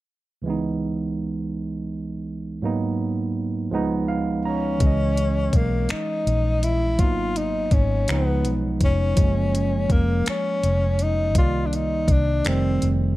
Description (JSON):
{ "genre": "slow six-eight R&B", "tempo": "55 BPM (dotted quarters)", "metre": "6/8", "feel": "straight", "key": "unclear", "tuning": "A4 = 442 Hz", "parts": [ { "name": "barky tine electric piano", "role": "accompaniment", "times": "0.4-13.2 s", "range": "C#2 to A#5", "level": "-25 LUFS", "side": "right 3 dB", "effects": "overdrive" }, { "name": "breathy tenor saxophone", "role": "melody", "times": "4.5-12.9 s", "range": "A#3 to E#4", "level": "-25 LUFS", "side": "left 2 dB", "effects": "none" }, { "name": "vintage muted fingered electric bass", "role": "bass", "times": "4.8-13.2 s", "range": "E#1 to C#2", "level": "-23 LUFS", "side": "equal", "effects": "none" }, { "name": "smooth R&B drum kit", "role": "drums", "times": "4.8-13.0 s", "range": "finger snaps, hi-hat, kick drum", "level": "-21 LUFS", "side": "equal", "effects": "none" } ], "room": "light reverb, digital ambience", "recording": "dark, warm production", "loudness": "-20 LUFS", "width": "side -17 dB against mid", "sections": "0.4-4.8 A section; 4.8-13.2 B section", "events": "tine electric piano fill 3.7-4.8", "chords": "0.4 C#m9; 2.6 G#m7; 3.7 C#7; 4.8 C#m9; 7.0 G#m7; 8.1 C#7; 9.2 F#maj9; 11.4 Cm9; 12.4 F7", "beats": "| 0.44 1.53 | 2.62 3.71 | 4.81 5.90 | 6.99 8.08 | 9.17 10.26 | 11.35 12.44" }